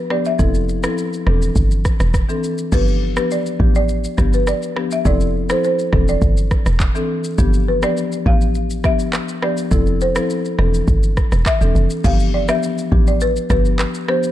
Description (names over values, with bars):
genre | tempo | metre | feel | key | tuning
afrobeats | 103 BPM | 4/4 | straight | unclear | A4 = 438 Hz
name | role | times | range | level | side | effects
folk marimba with medium mallets | melody | 0.0-14.3 s | B4 to F5 | -22 LUFS | right 1 dB | tape echo
marimba with medium mallets | accompaniment | 0.1-14.3 s | E3 to A4 | -22 LUFS | left 3 dB | none
afro-pop drum kit | drums | 0.1-14.3 s | crash cymbal, handclaps, kick drum, rim click, shaker | -20 LUFS | equal | none
deep log drum bass | bass | 0.4-13.9 s | E1 to A1 | -17 LUFS | equal | none
room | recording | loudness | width
little or no reverb | dark, warm production | -15 LUFS | side -13 dB against mid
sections
0.0-2.7 A section; 2.7-12.0 B section; 12.0-14.3 C section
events
none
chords
0.4 Fmaj7; 1.3 C69/E; 2.7 G7; 5.1 Fmaj7; 5.9 C69/E; 7.4 G7; 9.7 Fmaj7; 10.6 C69/E; 12.0 G7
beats
| 0.39 0.98 1.56 2.14 | 2.72 3.31 3.89 4.47 | 5.05 5.64 6.22 6.80 | 7.38 7.97 8.55 9.13 | 9.71 10.30 10.88 11.46 | 12.04 12.63 13.21 13.79